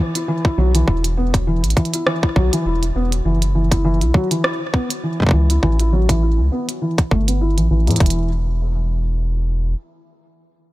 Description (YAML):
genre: IDM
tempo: 101 BPM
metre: 4/4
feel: swing 56% on 16ths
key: unclear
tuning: A4 = 440 Hz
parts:
  - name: felt-muted upright piano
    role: arpeggios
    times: 0.0-8.3 s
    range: E2 to E4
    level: -21 LUFS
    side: equal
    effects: low-pass filter, digital delay
  - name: glitchy drum kit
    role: drums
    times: 0.2-8.2 s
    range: hi-hat, rim click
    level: -24 LUFS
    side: right 1 dB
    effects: digital delay
  - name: electronic kick drum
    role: drums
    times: 0.4-8.1 s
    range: none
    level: -16 LUFS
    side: equal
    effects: none
  - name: round analog bass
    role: bass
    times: 0.6-9.7 s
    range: E1 to A2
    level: -17 LUFS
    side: equal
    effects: tube saturation
room: digital ambience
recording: none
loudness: -16 LUFS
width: side -18 dB against mid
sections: 0.0-8.0 A section; 8.0-10.4 B section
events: filter sweep on felt piano 0.0-8.0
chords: 0.0 E5; 3.3 F#5; 5.6 A7(no3); 8.0 N.C.